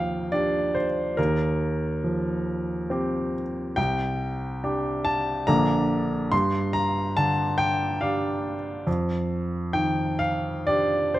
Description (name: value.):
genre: classical, impressionist solo piano.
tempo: 70 BPM.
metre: 3/4.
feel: rubato.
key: unclear.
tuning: A4 = 439 Hz.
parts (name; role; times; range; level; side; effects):
clear baby grand piano; solo; 0.0-11.2 s; Bb1 to C6; -23 LUFS; equal; none.
room: light reverb.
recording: close, detailed microphones.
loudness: -23 LUFS.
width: side -15 dB against mid.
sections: 0.0-11.2 A section.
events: none.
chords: 0.0 Ebmaj9; 1.2 F9sus4/Eb; 3.8 Csus2; 5.5 Bbmaj7; 6.3 G5; 8.9 Fsus2.